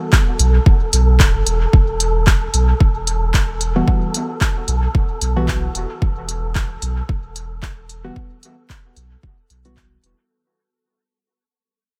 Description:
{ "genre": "dub techno", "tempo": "112 BPM", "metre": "4/4", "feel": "swing 56% on 16ths", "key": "E minor", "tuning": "A4 = 440 Hz", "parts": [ { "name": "wind-like tuned noise texture", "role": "texture", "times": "0.0-10.3 s", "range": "A4", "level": "-30 LUFS", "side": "equal", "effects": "built-in reverb, sidechain pumping" }, { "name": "deep house drum kit", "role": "drums", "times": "0.1-10.2 s", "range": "handclaps, hi-hat", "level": "-24 LUFS", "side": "equal", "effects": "dub echo" }, { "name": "electronic kick drum", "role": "drums", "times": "0.1-9.9 s", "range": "none", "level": "-17 LUFS", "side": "equal", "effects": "none" }, { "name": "pure sine sub bass", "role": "bass", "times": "0.4-10.1 s", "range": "D1 to B1", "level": "-21 LUFS", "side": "equal", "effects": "sidechain pumping" }, { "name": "deep mellow chord stab", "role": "stabs", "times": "3.8-9.9 s", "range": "E3 to F#4", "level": "-27 LUFS", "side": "equal", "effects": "chorus, phaser, sidechain pumping, dub echo" } ], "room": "digital ambience", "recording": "none", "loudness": "-17 LUFS", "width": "mono", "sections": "0.0-10.3 A section", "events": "filter sweep on synth stab 0.0-10.3; fade-out 1.7-10.3", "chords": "0.0 Emadd9", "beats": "0.13 0.66 1.20 | 1.73 2.27 2.80 3.34 | 3.88 4.41 4.95 5.48 | 6.02 6.55 7.09 7.63 | 8.16 8.70 9.23 9.77" }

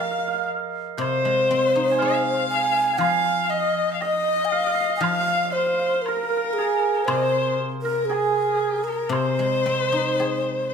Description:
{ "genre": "chinese traditional, Chinese chamber ensemble", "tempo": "59 BPM", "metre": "4/4", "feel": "rubato", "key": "C jue mode", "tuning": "A4 = 440 Hz", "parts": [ { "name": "breathy mellow low xiao", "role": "melody", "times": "0.0-10.7 s", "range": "Ab4 to Ab5", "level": "-23 LUFS", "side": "right 1 dB", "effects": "none" }, { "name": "clear erhu", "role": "second line", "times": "0.0-10.7 s", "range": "Ab4 to F5", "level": "-27 LUFS", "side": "left 8 dB", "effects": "none" }, { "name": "hammered dulcimer", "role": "second line", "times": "0.0-10.7 s", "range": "Ab4 to Ab5", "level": "-26 LUFS", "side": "right 6 dB", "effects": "none" }, { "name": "guzheng", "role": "accompaniment", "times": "0.0-10.7 s", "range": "C3 to Ab4", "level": "-29 LUFS", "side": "left 6 dB", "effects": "none" }, { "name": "woodblock", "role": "percussion", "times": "0.0-10.5 s", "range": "none", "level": "-33 LUFS", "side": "left 2 dB", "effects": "none" } ], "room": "light reverb", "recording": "minimal, uncompressed stereo recording", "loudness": "-20 LUFS", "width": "side -6 dB against mid", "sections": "0.0-10.7 A section", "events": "none", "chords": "none", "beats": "0.00 1.01 2.01 | 3.01 4.02 5.04 6.05 | 7.08 8.10 9.13 10.20" }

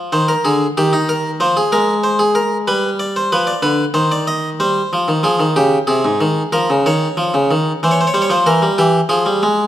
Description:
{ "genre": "classical, baroque-style two-part invention for harpsichord", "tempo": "94 BPM", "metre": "4/4", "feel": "straight", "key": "F minor", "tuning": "A4 = 441 Hz", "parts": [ { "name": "harpsichord", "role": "solo", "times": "0.0-9.7 s", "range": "Ab2 to Eb5", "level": "-13 LUFS", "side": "equal", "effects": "none" } ], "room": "moderate recital hall reverb, RT60 1.4 s", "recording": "none", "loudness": "-13 LUFS", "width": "side -12 dB against mid", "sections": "0.0-9.7 A section", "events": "none", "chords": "0.1 Cm (rootless); 1.4 Fmadd11; 2.7 G7; 4.0 Cm/Eb; 5.3 Fm (rootless); 6.5 Db69; 7.8 C7/E; 9.1 Fm", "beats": "| 0.14 0.78 1.42 2.06 | 2.69 3.33 3.97 4.61 | 5.25 5.89 6.54 7.18 | 7.82 8.47 9.11" }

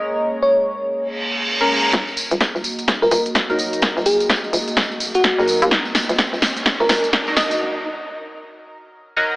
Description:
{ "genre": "bass house", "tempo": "127 BPM", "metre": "4/4", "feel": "swing 61% on 16ths", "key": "Eb minor", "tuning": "A4 = 440 Hz", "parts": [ { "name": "bell-like FM electric piano", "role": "melody", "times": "0.0-7.6 s", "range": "Gb4 to Eb5", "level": "-20 LUFS", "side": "equal", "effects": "chorus, tremolo, dub echo" }, { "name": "dark analog pad", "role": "sustained chords", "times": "0.0-7.6 s", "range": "Bb3 to Eb5", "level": "-30 LUFS", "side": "equal", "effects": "chorus, sidechain pumping" }, { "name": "band-passed chord stab", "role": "stabs", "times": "0.0-9.4 s", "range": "Gb3 to Bb4", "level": "-24 LUFS", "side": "equal", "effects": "phaser, analog chorus, sidechain pumping, dub echo" }, { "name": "reverse cymbal and riser", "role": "sound effects", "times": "1.1-7.6 s", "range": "none", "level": "-25 LUFS", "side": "right 1 dB", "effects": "none" }, { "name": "hollow knocking FM bass", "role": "bass", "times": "1.9-7.3 s", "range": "Eb1 to Eb2", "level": "-20 LUFS", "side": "equal", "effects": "sidechain pumping, high-pass filter" }, { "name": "big-room dance drum kit", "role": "drums", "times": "1.9-7.6 s", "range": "hi-hat, snare drum", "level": "-20 LUFS", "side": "equal", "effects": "overdrive" }, { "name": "electronic kick drum", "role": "drums", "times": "1.9-7.2 s", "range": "none", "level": "-23 LUFS", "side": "equal", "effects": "overdrive, high-pass filter on kick, high-pass filter on room" }, { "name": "tambourine", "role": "percussion", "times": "1.9-7.6 s", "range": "none", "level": "-27 LUFS", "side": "equal", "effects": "none" } ], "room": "moderate lush hall reverb, RT60 2.5 s", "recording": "high-pass filter, low-pass filter, AM radio sound", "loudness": "-16 LUFS", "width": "side -21 dB against mid", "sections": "0.0-1.9 A section; 1.9-9.4 B section", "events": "filter sweep 0.0-1.9; reverse cymbal 1.1-1.9; build-up 1.9-9.4; drum fill 1.9-7.6; riser 1.9-7.6; filter sweep on synth stab 1.9-9.4; break 7.6-9.4", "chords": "0.0 Bbm7; 1.9 Ebm", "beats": "| 0.04 0.52 0.99 1.46 | 1.93 2.40 2.88 3.35 | 3.82 4.29 4.77 5.24 | 5.71 6.18 6.66 7.13 | 7.60 8.07 8.55 9.02" }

